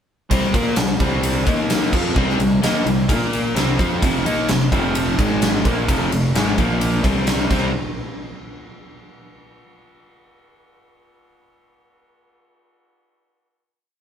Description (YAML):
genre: hard rock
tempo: 129 BPM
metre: 4/4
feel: straight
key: unclear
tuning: A4 = 441 Hz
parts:
  - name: overdriven electric guitar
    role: riff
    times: 0.3-7.7 s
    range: F2 to Bb4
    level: -21 LUFS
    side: left 4 dB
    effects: none
  - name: overdriven electric guitar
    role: riff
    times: 0.3-7.7 s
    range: F2 to Bb4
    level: -24 LUFS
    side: right 6 dB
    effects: none
  - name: fuzz fingered electric bass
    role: bass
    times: 0.3-7.7 s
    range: F1 to Bb2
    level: -25 LUFS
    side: equal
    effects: overdrive
  - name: huge arena drum kit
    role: drums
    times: 0.3-7.6 s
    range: crash cymbal, kick drum, ride cymbal, snare drum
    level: -21 LUFS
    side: equal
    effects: none
room: light reverb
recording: band playing live in one room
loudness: -16 LUFS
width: side -8 dB against mid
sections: 0.3-7.7 riff; 7.7-9.6 final hit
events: none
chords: 0.3 C5; 1.5 Eb5; 1.9 C5; 3.1 Bb5; 3.6 C5; 4.0 F5; 5.2 Ab5; 5.7 F5; 6.6 Bb5; 7.0 C5; 7.7 N.C.